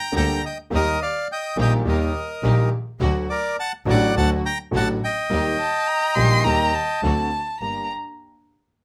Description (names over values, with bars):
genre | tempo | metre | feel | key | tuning
tango | 104 BPM | 4/4 | rubato | G minor | A4 = 442 Hz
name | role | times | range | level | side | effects
bandoneon | melody | 0.0-7.0 s | Bb4 to Bb5 | -26 LUFS | equal | none
warm concert grand piano | accompaniment | 0.1-7.9 s | A1 to A4 | -27 LUFS | equal | none
rich studio string section | stabs | 0.1-7.9 s | A3 to A4 | -34 LUFS | equal | none
rich double bass | bass | 0.1-7.9 s | G1 to Eb2 | -25 LUFS | equal | none
warm violin | second line | 5.6-7.9 s | A5 to C6 | -26 LUFS | equal | none
room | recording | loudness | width
light reverb | none | -22 LUFS | mono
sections
0.0-7.6 A section; 7.6-8.8 B section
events
none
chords
0.0 Gmadd9; 0.7 Eb; 3.0 D; 5.3 Eb; 7.0 D7; 7.6 Gm